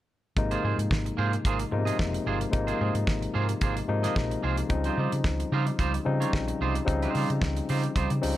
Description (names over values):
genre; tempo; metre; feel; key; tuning
disco; 111 BPM; 4/4; straight; Ab major; A4 = 439 Hz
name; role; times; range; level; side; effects
barky tine electric piano; accompaniment; 0.4-8.4 s; Cb3 to Eb4; -30 LUFS; left 4 dB; overdrive
clean electric guitar; accompaniment; 0.4-8.3 s; G3 to Eb5; -32 LUFS; right 7 dB; vibrato effect
hollow-body short-scale fingered electric bass; bass; 0.4-8.3 s; F1 to Db3; -29 LUFS; equal; none
damped 70s drum kit; drums; 0.4-8.4 s; hi-hat, kick drum, snare drum; -29 LUFS; equal; none
room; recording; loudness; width
studio ambience; none; -25 LUFS; side -14 dB against mid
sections
0.4-8.4 A section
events
none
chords
0.4 Ab69; 4.7 Dbmaj9#11